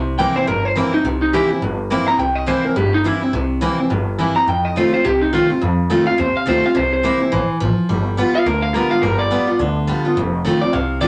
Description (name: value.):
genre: rockabilly.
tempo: 211 BPM.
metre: 4/4.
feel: swing 59% on 8ths.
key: C mixolydian.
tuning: A4 = 440 Hz.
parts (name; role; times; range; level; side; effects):
picked steel-string acoustic guitar; accompaniment; 0.0-11.1 s; F2 to F4; -20 LUFS; equal; none.
upright bass; bass; 0.0-11.1 s; F1 to F2; -25 LUFS; equal; none.
electric guitar through a small old amp; melody; 0.2-11.1 s; Eb4 to Bb5; -21 LUFS; equal; none.
room: moderate small room reverb, RT60 0.6 s.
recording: none.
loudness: -18 LUFS.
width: mono.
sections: 0.0-11.1 A section.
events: clean electric guitar solo 0.0-11.1.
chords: 0.0 C7; 4.5 F7; 6.8 C7; 7.9 G7; 10.2 F7.